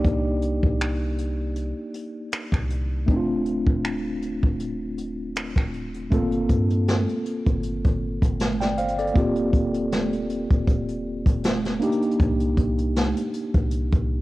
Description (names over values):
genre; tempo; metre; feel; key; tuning
contemporary R&B; 79 BPM; 4/4; swing 54% on 16ths; G minor; A4 = 440 Hz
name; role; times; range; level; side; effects
mellow tine electric piano; accompaniment; 0.0-14.2 s; A3 to G5; -25 LUFS; equal; medium stereo tremolo, cassette tape
warm 808-style bass; bass; 0.0-14.2 s; D1 to G2; -28 LUFS; equal; none
jazz brush drum kit; drums; 0.0-14.1 s; finger snaps, hi-hat, kick drum, snare drum; -24 LUFS; equal; cassette tape
room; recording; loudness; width
small room ambience; home recording on cassette; -21 LUFS; side -18 dB against mid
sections
0.0-6.1 A section; 6.1-14.2 B section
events
none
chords
0.0 Cm7; 3.1 Dm7; 6.1 Gm11; 9.2 Eb6; 11.8 Cm7